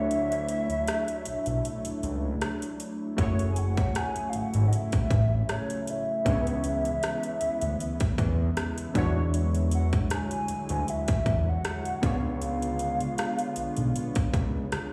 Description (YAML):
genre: contemporary R&B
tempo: 78 BPM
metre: 4/4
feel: swing 54% on 16ths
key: unclear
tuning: A4 = 441 Hz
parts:
  - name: hollow clarinet-like synth lead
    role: melody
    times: 0.0-14.7 s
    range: C#5 to G#5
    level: -34 LUFS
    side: equal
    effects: chorus, tape echo
  - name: warm analog keys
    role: accompaniment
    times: 0.0-14.9 s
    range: G#3 to C#5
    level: -37 LUFS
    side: equal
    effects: chorus
  - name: warm analog pad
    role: sustained chords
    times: 0.0-14.9 s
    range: C#3 to C#5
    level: -38 LUFS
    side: equal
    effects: subtle chorus, sidechain pumping
  - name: fat analog bass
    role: bass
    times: 0.0-14.7 s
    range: F#1 to E2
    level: -30 LUFS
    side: equal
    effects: none
  - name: trap drum kit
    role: drums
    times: 0.1-14.9 s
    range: hi-hat, kick drum, rim click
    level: -32 LUFS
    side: equal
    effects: overdrive
room: light reverb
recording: played on a big sound system in a bare room, large studio reverb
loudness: -28 LUFS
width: mono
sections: 0.0-14.9 A section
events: break 0.0-3.2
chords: 0.0 Dmaj9; 3.2 F#m9; 6.3 C#m7; 9.0 E13; 12.0 C#7b9